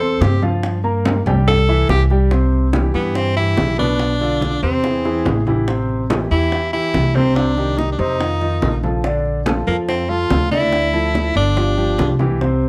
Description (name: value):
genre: Afro-Cuban jazz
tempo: 143 BPM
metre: 4/4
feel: straight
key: C major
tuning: A4 = 440 Hz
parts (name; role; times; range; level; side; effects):
- bright tenor saxophone; melody; 0.0-12.2 s; Bb3 to A4; -22 LUFS; equal; none
- warm concert grand piano; accompaniment; 0.0-12.7 s; B2 to C6; -23 LUFS; equal; none
- upright bass; bass; 0.0-12.7 s; G1 to G2; -22 LUFS; equal; none
- congas; percussion; 0.0-12.7 s; none; -27 LUFS; equal; none
- bongos; percussion; 0.2-12.6 s; none; -27 LUFS; equal; none
room: light reverb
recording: dark, warm production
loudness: -17 LUFS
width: mono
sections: 0.0-2.3 A section; 2.3-12.7 B section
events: tenor saxophone solo 0.0-2.3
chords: 0.0 Am7; 0.6 Gm7; 1.5 C; 2.3 Cmaj7; 4.0 Bdim; 4.8 Eaug; 5.7 Am7; 7.4 Cm; 8.2 F7; 9.0 Bbmaj7; 10.7 Dmadd9; 11.6 G5